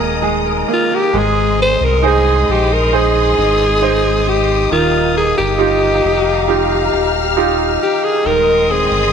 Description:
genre	pop ballad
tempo	68 BPM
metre	4/4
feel	straight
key	Ab major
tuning	A4 = 440 Hz
part	clear concert grand piano	accompaniment	0.0-9.1 s	Eb3 to C5	-18 LUFS	right 10 dB	none
part	warm studio string section	sustained chords	0.0-9.1 s	Ab3 to F6	-20 LUFS	left 2 dB	none
part	fingerpicked steel-string acoustic guitar	arpeggios	0.0-9.1 s	Ab2 to Eb5	-21 LUFS	left 11 dB	tape echo
part	sub bass with octave	bass	0.0-9.1 s	Eb1 to C2	-20 LUFS	equal	none
part	breathy alto saxophone	melody	0.7-9.1 s	F4 to C5	-15 LUFS	equal	none
room	moderate echo chamber reverb, RT60 1.7 s, small room ambience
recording	1960s-style stereo with parts hard left and right, lossy compression artefacts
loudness	-12 LUFS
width	side -7 dB against mid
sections	0.0-1.1 A section; 1.1-9.1 B section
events	none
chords	0.0 Ebsus4; 1.1 Ab; 4.7 Ebadd9; 8.3 Ab/Eb

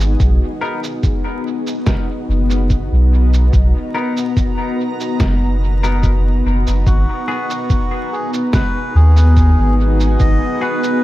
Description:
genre	ambient dub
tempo	72 BPM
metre	4/4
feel	swing 53% on 16ths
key	unclear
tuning	A4 = 440 Hz
part	granular cloud pad	sustained chords	0.0-11.0 s	B3 to A#5	-21 LUFS	left 1 dB	built-in reverb
part	soft dub sub bass	bass	0.0-10.4 s	F#1 to D#2	-12 LUFS	equal	none
part	electronic cabasa and snare drum	drums	0.0-11.0 s	none	-26 LUFS	right 1 dB	dub echo
part	electronic kick drum	drums	0.2-10.4 s	none	-17 LUFS	equal	none
part	semi-hollow electric guitar	stabs	0.6-10.8 s	B3 to A#4	-27 LUFS	left 3 dB	dub echo
part	melodica	melody	6.9-11.0 s	F#4 to D#5	-23 LUFS	equal	dub echo
part	drifting glass-harmonics texture	texture	7.5-11.0 s	B3	-25 LUFS	equal	chorus, built-in reverb
room	light reverb, digital ambience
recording	dark, warm production, vinyl crackle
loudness	-13 LUFS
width	side -16 dB against mid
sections	0.0-11.0 A section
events	none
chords	0.2 Bmaj7; 6.9 G#m7

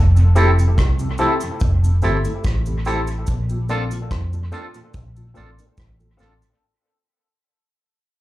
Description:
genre	lovers rock reggae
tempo	72 BPM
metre	4/4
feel	swing 54% on 16ths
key	unclear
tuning	A4 = 442 Hz
part	vintage muted fingered electric bass	bass	0.0-6.4 s	F1 to F2	-17 LUFS	equal	none
part	mellow tonewheel organ	accompaniment	0.2-6.3 s	F2 to E4	-31 LUFS	left 1 dB	chorus vibrato, slow rotary speaker, dub echo, plate reverb, slapback echo
part	cabasa	percussion	0.2-6.6 s	none	-43 LUFS	right 4 dB	none
part	barky tine electric piano	accompaniment	0.4-6.3 s	C4 to A4	-25 LUFS	left 2 dB	overdrive, analog chorus, dub echo, plate reverb, slapback echo
part	twangy electric guitar	stabs	0.4-6.5 s	C4 to A4	-24 LUFS	right 3 dB	wide subtle chorus, plate reverb, slapback echo
part	soft brush drum kit	drums	0.4-6.6 s	hi-hat, kick drum, rim click	-22 LUFS	equal	dub echo
room	light reverb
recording	live gig heard through the venue's PA, club reverb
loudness	-16 LUFS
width	side -16 dB against mid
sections	0.0-6.6 A section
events	fade-out 0.0-6.6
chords	0.0 Fmaj7; 3.3 Bbmaj7

